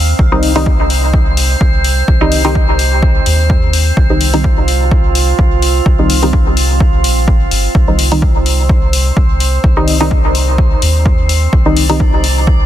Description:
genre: dub techno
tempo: 127 BPM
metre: 4/4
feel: swing 55% on 16ths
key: C minor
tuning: A4 = 442 Hz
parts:
  - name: soft dub sub bass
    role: bass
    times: 0.0-12.7 s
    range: G1 to Eb2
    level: -14 LUFS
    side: equal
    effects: sidechain pumping
  - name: drifting glass-harmonics texture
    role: texture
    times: 0.0-12.7 s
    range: C4 to F5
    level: -19 LUFS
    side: right 4 dB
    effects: chorus, built-in reverb, sidechain pumping
  - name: electronic kick drum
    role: drums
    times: 0.2-12.6 s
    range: none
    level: -12 LUFS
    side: equal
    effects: overdrive
  - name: filtered dub chord stab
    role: stabs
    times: 0.3-12.0 s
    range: Eb3 to Eb4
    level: -17 LUFS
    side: left 1 dB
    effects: chorus, phaser, vintage 12-bit sampler grit, sidechain pumping, dub echo
  - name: electronic hi-hat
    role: drums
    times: 0.4-12.3 s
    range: none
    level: -20 LUFS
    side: left 6 dB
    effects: overdrive
room: little or no reverb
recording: dense, heavily limited modern master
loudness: -9 LUFS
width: side -12 dB against mid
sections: 0.0-12.7 A section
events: filter sweep on synth stab 0.0-12.7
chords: 0.0 Cm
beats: | 0.19 0.66 1.14 1.61 | 2.08 2.55 3.03 3.50 | 3.97 4.44 4.92 5.39 | 5.86 6.33 6.80 7.28 | 7.75 8.22 8.70 9.17 | 9.64 10.11 10.59 11.06 | 11.53 12.00 12.47

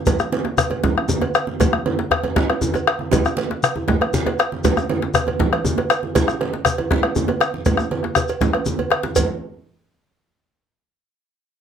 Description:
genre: west african traditional, West African drum ensemble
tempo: 159 BPM (dotted quarters)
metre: 12/8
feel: straight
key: none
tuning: none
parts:
  - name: bombo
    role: percussion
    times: 0.1-9.3 s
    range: none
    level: -20 LUFS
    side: left 2 dB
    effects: none
  - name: congas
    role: percussion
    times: 0.1-9.3 s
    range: none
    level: -23 LUFS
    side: right 4 dB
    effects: none
  - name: cowbell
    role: percussion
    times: 0.1-9.3 s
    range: none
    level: -25 LUFS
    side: right 6 dB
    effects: none
  - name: djembe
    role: percussion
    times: 0.1-9.3 s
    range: none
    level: -25 LUFS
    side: left 5 dB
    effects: none
  - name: shekere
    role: percussion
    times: 0.1-9.3 s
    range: none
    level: -28 LUFS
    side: left 4 dB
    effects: none
room: wet studio reverb, RT60 0.5 s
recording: none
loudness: -17 LUFS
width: side -8 dB against mid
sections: 0.0-9.2 A section; 9.2-10.7 B section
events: drum fill 8.7-9.2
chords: none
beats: | 0.07 0.46 0.84 1.22 | 1.60 1.99 2.37 2.75 | 3.13 3.51 3.89 4.26 | 4.64 5.02 5.40 5.78 | 6.16 6.53 6.91 7.29 | 7.66 8.04 8.41 8.79 | 9.16

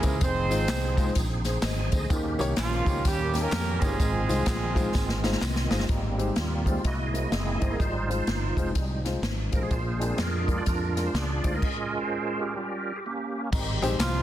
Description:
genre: uptempo gospel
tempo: 126 BPM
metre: 4/4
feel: swing 62% on 8ths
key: Ab major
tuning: A4 = 440 Hz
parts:
  - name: warm horn section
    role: melody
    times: 0.0-5.4, 14.0-14.2 s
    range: F3 to C5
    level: -29 LUFS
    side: right 3 dB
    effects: none
  - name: warm upright piano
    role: accompaniment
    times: 0.0-14.2 s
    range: Ab2 to Eb5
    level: -32 LUFS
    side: left 3 dB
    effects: none
  - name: bright tonewheel organ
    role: sustained chords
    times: 0.0-14.2 s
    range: C3 to Bb5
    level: -32 LUFS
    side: right 3 dB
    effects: fast rotary speaker, chorus vibrato
  - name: fingered electric bass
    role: bass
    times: 0.0-14.2 s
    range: F1 to F2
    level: -29 LUFS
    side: equal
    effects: none
  - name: swinging big-band drum kit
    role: drums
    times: 0.0-14.1 s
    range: crash cymbal, hi-hat, kick drum, snare drum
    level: -28 LUFS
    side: equal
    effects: none
  - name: tambourine and handclaps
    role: percussion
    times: 0.0-5.8, 13.5-14.1 s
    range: none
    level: -40 LUFS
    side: left 1 dB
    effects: none
  - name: warm French horn section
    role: sustained chords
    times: 5.9-11.6 s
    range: F3 to G4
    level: -41 LUFS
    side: left 1 dB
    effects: none
room: studio ambience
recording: dense, heavily limited modern master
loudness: -24 LUFS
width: side -12 dB against mid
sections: 0.0-5.9 A section; 5.9-13.5 B section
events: tonewheel organ fill 1.4-2.1, 4.9-5.9; drum fill 4.9-5.9; tonewheel organ solo 5.9-13.5; stop 11.6-13.5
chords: 0.2 Fm7; 2.1 Eb7; 4.0 Ab6; 5.9 Abmaj7; 6.8 C7alt; 7.8 Fm7; 9.7 Bb7; 11.6 Bbm11/Ab; 12.6 Gm7b5; 13.5 Abmaj7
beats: | 0.22 0.69 1.17 1.64 | 2.11 2.58 3.05 3.53 | 4.00 4.47 4.95 5.42 | 5.89 6.37 6.85 7.32 | 7.80 8.28 8.76 9.23 | 9.71 10.19 10.67 11.14 | 11.62 12.10 12.58 13.05 | 13.53 14.00

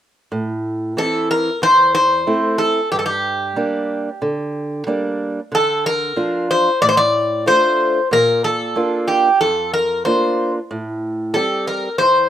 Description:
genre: greek folk, Greek bouzouki band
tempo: 92 BPM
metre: 4/4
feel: straight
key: A phrygian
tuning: A4 = 440 Hz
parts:
  - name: fingerpicked old ladder-braced acoustic guitar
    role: accompaniment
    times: 0.3-12.3 s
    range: E2 to G4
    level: -22 LUFS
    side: right 2 dB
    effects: none
  - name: Greek bouzouki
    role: melody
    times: 1.0-12.3 s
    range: G4 to D5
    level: -15 LUFS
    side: left 1 dB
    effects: slapback echo
room: little or no reverb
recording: recorded outdoors, with no room sound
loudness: -15 LUFS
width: side -10 dB against mid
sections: 0.3-12.3 A section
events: none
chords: 0.3 Am; 2.9 Gm; 5.5 Dm; 8.1 Bb; 10.7 Am7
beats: | 0.31 0.96 1.61 2.26 | 2.92 3.56 4.21 4.87 | 5.51 6.17 6.81 7.46 | 8.11 8.76 9.41 10.06 | 10.71 11.36 12.01

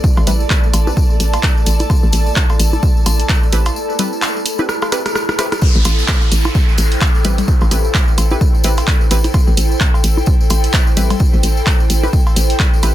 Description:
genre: minimal techno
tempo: 129 BPM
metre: 4/4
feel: swing 58% on 16ths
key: A minor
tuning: A4 = 440 Hz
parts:
  - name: electronic kick drum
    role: drums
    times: 0.0-12.7 s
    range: none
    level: -14 LUFS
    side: equal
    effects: none
  - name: tambourine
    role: percussion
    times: 0.0-12.9 s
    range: none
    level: -27 LUFS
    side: left 4 dB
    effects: none
  - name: airy breathy pad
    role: texture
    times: 0.0-12.9 s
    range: E4 to A5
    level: -23 LUFS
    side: equal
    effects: chorus, sidechain pumping
  - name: flickering grainy texture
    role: texture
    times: 0.0-5.6 s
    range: A3 to A4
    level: -31 LUFS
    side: right 1 dB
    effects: built-in reverb, sidechain pumping
  - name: hollow knocking FM bass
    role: bass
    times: 0.2-12.9 s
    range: A1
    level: -16 LUFS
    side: equal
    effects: sidechain pumping
  - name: cowbell, congas and bongos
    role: percussion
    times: 0.2-12.9 s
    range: none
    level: -24 LUFS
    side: left 2 dB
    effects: dub echo
  - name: filtered dub chord stab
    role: stabs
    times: 0.3-12.9 s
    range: C4 to B4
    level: -26 LUFS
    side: right 2 dB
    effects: chorus, dub echo
  - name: punchy analog drum machine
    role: drums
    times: 0.3-12.9 s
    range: handclaps, hi-hat, rim click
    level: -20 LUFS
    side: equal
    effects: none
  - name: downlifter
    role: sound effects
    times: 5.6-9.3 s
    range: none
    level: -25 LUFS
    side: right 1 dB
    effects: none
room: little or no reverb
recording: dense, heavily limited modern master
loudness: -12 LUFS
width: side -13 dB against mid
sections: 0.0-5.6 A section; 5.6-12.9 B section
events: break 3.8-5.6; drum fill 4.7-5.6; drop 5.6-12.9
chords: 0.0 Am7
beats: | 0.04 0.50 0.97 1.43 | 1.90 2.36 2.83 3.29 | 3.76 4.22 4.69 5.15 | 5.62 6.08 6.55 7.01 | 7.48 7.95 8.41 8.88 | 9.34 9.81 10.27 10.74 | 11.20 11.67 12.13 12.60

